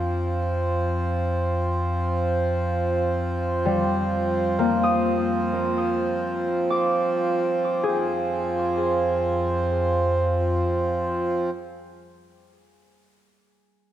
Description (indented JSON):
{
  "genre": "ambient",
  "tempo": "free time",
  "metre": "none",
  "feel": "none",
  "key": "F dorian",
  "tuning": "A4 = 440 Hz",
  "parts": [
    { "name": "deep rumbling drone", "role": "bass", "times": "0.0-10.6 s", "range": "F2", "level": "-28 LUFS", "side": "left 1 dB", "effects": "built-in reverb" },
    { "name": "pedal harmonium", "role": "drone", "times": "0.0-11.5 s", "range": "F3 to C4", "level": "-23 LUFS", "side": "right 2 dB", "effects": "none" },
    { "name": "concert harp", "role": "arpeggios", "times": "3.7-11.5 s", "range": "G3 to Eb6", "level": "-26 LUFS", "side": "left 2 dB", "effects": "analog delay, shimmer reverb" }
  ],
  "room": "wet echo chamber reverb, RT60 2.2 s",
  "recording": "echo-heavy mix",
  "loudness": "-21 LUFS",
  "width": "side -11 dB against mid",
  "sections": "0.0-7.8 A section; 7.8-11.6 B section",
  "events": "fade-in on harp 0.0-7.8",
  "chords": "0.0 F9sus4; 7.8 Fm"
}